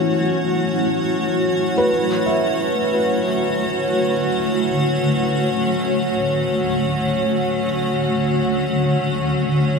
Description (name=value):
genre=ambient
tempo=free time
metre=none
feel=none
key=unclear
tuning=A4 = 436 Hz
part: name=granular cloud pad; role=sustained chords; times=0.0-9.8 s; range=D3 to F#5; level=-19 LUFS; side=left 1 dB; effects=built-in reverb
part: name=felt-muted upright piano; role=arpeggios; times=0.0-9.8 s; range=E3 to E5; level=-25 LUFS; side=equal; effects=ping-pong delay
part: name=pedal harmonium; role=drone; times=0.0-9.8 s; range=F#3 to C#4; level=-25 LUFS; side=right 1 dB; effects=none
room=wet cathedral reverb, RT60 5.8 s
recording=none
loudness=-17 LUFS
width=side -4 dB against mid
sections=0.0-9.8 A section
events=none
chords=0.0 F#m7; 1.9 Dmaj7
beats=free time